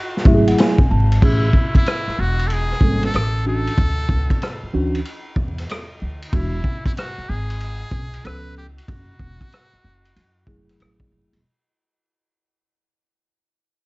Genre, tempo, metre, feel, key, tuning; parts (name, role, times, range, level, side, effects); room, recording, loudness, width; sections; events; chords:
hip hop, jazz-hop; 94 BPM; 4/4; swing 65% on 16ths; F# minor; A4 = 440 Hz
trumpet with metal mute; melody; 0.0-10.8 s; D#4 to B4; -28 LUFS; equal
vintage drum kit; drums; 0.2-11.4 s; crash cymbal, hi-hat, kick drum, ride cymbal, rim click, snare drum; -19 LUFS; equal
mellow tine electric piano; accompaniment; 0.3-11.4 s; E3 to A5; -20 LUFS; equal; medium stereo tremolo
upright bass; bass; 0.3-11.4 s; E1 to F#2; -21 LUFS; equal
light reverb; dark, warm production, vinyl crackle, nothing above 7.8 kHz; -17 LUFS; side -24 dB against mid
0.0-1.2 A section; 1.2-11.4 B section
tine electric piano fill 0.0-1.2; fade-out 1.2-11.4
0.0 F#m9; 1.2 Amaj7; 3.1 A; 3.8 Dmaj7sus2; 6.3 E9; 8.2 C#aug7; 8.9 F#m9